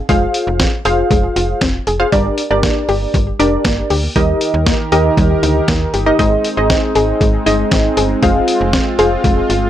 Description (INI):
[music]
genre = synth-pop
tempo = 118 BPM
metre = 4/4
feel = straight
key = unclear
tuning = A4 = 445 Hz
[part]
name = funky polysynth comp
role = accompaniment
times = 0.1-9.7 s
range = D4 to F5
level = -16 LUFS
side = equal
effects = chorus
[part]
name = soft round pluck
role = arpeggios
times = 0.1-9.6 s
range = G3 to Ab4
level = -20 LUFS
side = left 2 dB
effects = chorus, analog delay
[part]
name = slap-like FM bass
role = bass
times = 0.1-9.7 s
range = F1 to Eb2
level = -19 LUFS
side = equal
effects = none
[part]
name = lo-fi sampler-style drum kit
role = drums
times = 0.1-9.6 s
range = hi-hat, kick drum, snare drum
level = -17 LUFS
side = equal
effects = none
[part]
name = warm analog pad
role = sustained chords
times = 4.2-9.7 s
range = Eb3 to Bb4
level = -19 LUFS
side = right 1 dB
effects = chorus
[sound]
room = digital ambience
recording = dry, gritty hardware recording, transformer saturation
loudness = -12 LUFS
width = side -11 dB against mid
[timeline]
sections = 0.0-9.7 A section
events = none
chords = 0.1 Fm; 2.1 Gm; 4.2 Eb; 6.2 Ab; 8.2 Fm